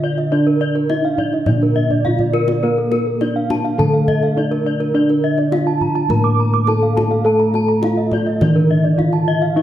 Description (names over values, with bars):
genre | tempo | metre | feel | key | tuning
Balinese gamelan | 104 BPM | 4/4 | straight | D pelog | A4 = 441 Hz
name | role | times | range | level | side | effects
gamelan-type bronze metallophone | melody | 0.0-9.6 s | Bb3 to Bb4 | -21 LUFS | equal | none
gamelan-type bronze metallophone | accompaniment | 0.0-9.6 s | D3 to Bb3 | -24 LUFS | equal | none
gamelan-type bronze metallophone | arpeggios | 0.0-9.6 s | Bb4 to Bb5 | -24 LUFS | left 6 dB | none
gamelan-type bronze metallophone | arpeggios | 0.0-9.6 s | A4 to D6 | -24 LUFS | right 6 dB | slapback echo
gamelan-type bossed gongs | bass | 0.0-9.6 s | A2 to Bb4 | -18 LUFS | equal | none
kendang | percussion | 0.2-9.5 s | none | -26 LUFS | equal | none
room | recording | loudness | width
light reverb | none | -14 LUFS | side -12 dB against mid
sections
0.0-9.6 A section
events
drum fill 1.9-2.6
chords
none